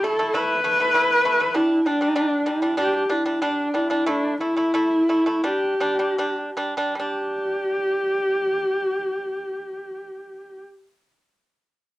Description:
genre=mongolian traditional, Mongolian folk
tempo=74-99 BPM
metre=4/4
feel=straight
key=G gong mode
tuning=A4 = 437 Hz
part: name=dark horsehead fiddle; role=melody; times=0.0-10.6 s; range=D4 to B4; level=-21 LUFS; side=equal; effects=cassette tape
part: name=pipa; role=arpeggios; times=0.0-10.6 s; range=G3 to E4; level=-26 LUFS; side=right 1 dB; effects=none
room=light reverb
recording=home recording on cassette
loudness=-20 LUFS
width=side -17 dB against mid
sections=0.0-7.0 A section; 7.0-10.2 B section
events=slowing down 1.6-7.0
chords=0.0 A5; 1.6 G5; 4.1 A5; 5.4 G5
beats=0.34 0.95 | 1.55 2.16 2.78 3.41 | 4.07 4.74 5.45 6.19 | 6.97 7.78 8.59 9.40

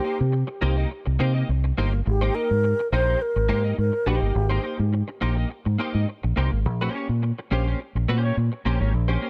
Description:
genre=disco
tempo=105 BPM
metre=4/4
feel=straight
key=unclear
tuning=A4 = 441 Hz
part: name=mellow alto flute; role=melody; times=0.0-4.9 s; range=G4 to C5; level=-28 LUFS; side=equal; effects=analog delay
part: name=clean electric guitar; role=accompaniment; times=0.0-9.3 s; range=Bb3 to Eb5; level=-31 LUFS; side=equal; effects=ensemble chorus
part: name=fingered electric bass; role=bass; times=0.2-9.2 s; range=G1 to C3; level=-24 LUFS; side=equal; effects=none
room=studio reverb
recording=none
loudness=-24 LUFS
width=mono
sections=0.0-9.3 A section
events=none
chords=0.0 Cm7; 2.1 Abmaj9; 6.6 Bbm69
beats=0.34 0.91 1.49 | 2.06 2.63 3.21 3.78 | 4.35 4.93 5.50 6.07 | 6.65 7.22 7.79 8.37 | 8.94

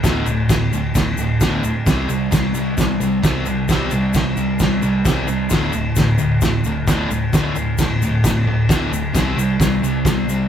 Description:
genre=garage rock duo or trio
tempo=132 BPM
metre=4/4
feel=straight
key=unclear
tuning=A4 = 441 Hz
part: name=fuzz guitar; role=riff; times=0.0-10.5 s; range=D2 to C4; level=-19 LUFS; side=equal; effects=distortion
part: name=vintage muted picked electric bass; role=bass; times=0.0-10.5 s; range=D1 to C2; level=-24 LUFS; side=equal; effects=overdrive
part: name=cloth-damped thuddy drum kit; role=drums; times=0.0-10.2 s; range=crash cymbal, kick drum, snare drum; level=-19 LUFS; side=equal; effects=none
part: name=egg shaker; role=percussion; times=0.0-10.4 s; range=none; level=-32 LUFS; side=left 7 dB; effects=none
room=light reverb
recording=band playing live in one room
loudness=-16 LUFS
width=side -9 dB against mid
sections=0.0-10.5 A section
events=none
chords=0.0 D5; 1.9 C5; 5.5 D5; 9.1 C5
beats=| 0.04 0.50 0.96 1.41 | 1.87 2.33 2.78 3.24 | 3.69 4.15 4.60 5.06 | 5.51 5.97 6.42 6.88 | 7.33 7.78 8.24 8.69 | 9.14 9.60 10.05

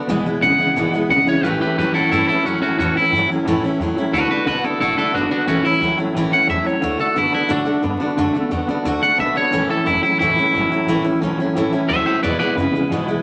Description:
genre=rockabilly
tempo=178 BPM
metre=4/4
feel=straight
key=A major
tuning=A4 = 440 Hz
part: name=picked steel-string acoustic guitar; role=accompaniment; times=0.0-13.2 s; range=E2 to F#4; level=-23 LUFS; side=equal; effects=none
part: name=semi-hollow electric guitar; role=riff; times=0.0-13.2 s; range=E2 to B3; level=-26 LUFS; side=equal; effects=tremolo
part: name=upright bass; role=bass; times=0.1-13.1 s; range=E1 to A2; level=-32 LUFS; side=equal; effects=none
part: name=electric guitar at the edge of break-up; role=melody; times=0.4-13.2 s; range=C#4 to F#5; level=-20 LUFS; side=equal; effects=none
room=moderate studio reverb, RT60 0.8 s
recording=vinyl crackle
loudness=-18 LUFS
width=mono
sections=0.0-1.4 A section; 1.4-13.2 A section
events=none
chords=0.1 E; 1.4 A; 4.1 D; 5.5 A; 6.8 D; 9.5 A; 12.2 E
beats=| 0.09 0.43 0.77 1.10 | 1.44 1.78 2.11 2.45 | 2.79 3.12 3.46 3.80 | 4.13 4.47 4.81 5.14 | 5.48 5.82 6.15 6.49 | 6.83 7.16 7.50 7.84 | 8.18 8.51 8.85 9.19 | 9.53 9.87 10.20 10.54 | 10.88 11.22 11.56 11.89 | 12.23 12.57 12.91

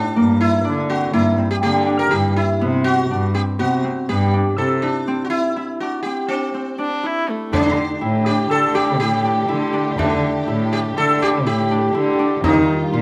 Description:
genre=contemporary instrumental, chamber music in an uneven meter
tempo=122 BPM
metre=5/4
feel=straight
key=unclear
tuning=A4 = 441 Hz
part: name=sitar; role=melody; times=0.0-13.0 s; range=C4 to Bb4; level=-23 LUFS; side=equal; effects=none
part: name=Celtic harp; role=arpeggios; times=0.0-13.0 s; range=Bb3 to A4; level=-26 LUFS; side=equal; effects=none
part: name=warm cello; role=bass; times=0.2-13.0 s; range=G2 to Eb3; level=-22 LUFS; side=equal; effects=none
part: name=rich viola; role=second line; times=6.8-7.5 s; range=A3 to E4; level=-26 LUFS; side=equal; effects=none
part: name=warm symphonic string section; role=sustained chords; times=7.5-13.0 s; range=D3 to G4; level=-30 LUFS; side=equal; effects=none
part: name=frame drum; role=percussion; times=7.5-12.7 s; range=none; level=-28 LUFS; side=equal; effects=none
part: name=large celesta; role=texture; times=8.0-11.2 s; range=E5 to G5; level=-32 LUFS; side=equal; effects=none
room=light reverb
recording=close, detailed microphones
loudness=-19 LUFS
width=mono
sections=0.0-7.5 A section; 7.5-13.0 B section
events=break 5.1-7.5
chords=0.2 Gm6; 2.6 Cmaj7; 5.1 C; 7.5 Dsus4; 12.4 Ebadd9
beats=| 0.17 0.66 1.15 1.64 2.13 | 2.62 3.11 3.60 4.09 4.58 | 5.08 5.57 6.06 6.55 7.04 | 7.53 8.02 8.51 9.01 9.50 | 9.99 10.48 10.97 11.46 11.95 | 12.45 12.94

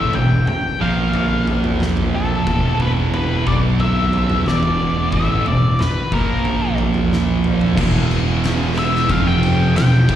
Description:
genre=stoner and doom metal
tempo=90 BPM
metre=4/4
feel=straight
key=unclear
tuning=A4 = 440 Hz
part: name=octave-fuzz lead guitar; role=melody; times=0.0-10.2 s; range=A4 to G5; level=-22 LUFS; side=left 2 dB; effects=distortion, slapback echo
part: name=soft string machine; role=sustained chords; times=0.6-10.2 s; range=E3 to C5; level=-35 LUFS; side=equal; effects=none
part: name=thick fuzz guitar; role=riff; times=0.0-10.2 s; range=E2 to B3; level=-22 LUFS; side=left 5 dB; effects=distortion
part: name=thick fuzz guitar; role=riff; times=0.0-10.2 s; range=E2 to B3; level=-20 LUFS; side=right 6 dB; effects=distortion
part: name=fuzz picked electric bass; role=bass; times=0.0-10.2 s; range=E1 to B1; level=-22 LUFS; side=equal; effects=overdrive
part: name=oversized low-tuned drum kit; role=drums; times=0.1-10.2 s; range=crash cymbal, kick drum, ride cymbal, snare drum, toms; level=-22 LUFS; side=equal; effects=none
part: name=thick fuzz guitar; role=riff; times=7.8-10.2 s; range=E2 to F3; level=-23 LUFS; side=equal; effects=distortion
room=light reverb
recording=live gig heard through the venue's PA, recital hall reverb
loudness=-15 LUFS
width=side -11 dB against mid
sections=0.0-7.8 A section; 7.8-10.2 B section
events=drum fill 7.1-7.8; lead electric guitar solo 7.8-10.2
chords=0.0 E5; 0.8 A#5; 2.5 E5; 3.5 B5; 4.5 E5; 6.1 A#5; 7.8 E5; 9.1 F5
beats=0.47 1.14 1.80 | 2.47 3.13 3.80 4.46 | 5.13 5.79 6.45 7.12 | 7.78 8.44 9.10 9.76

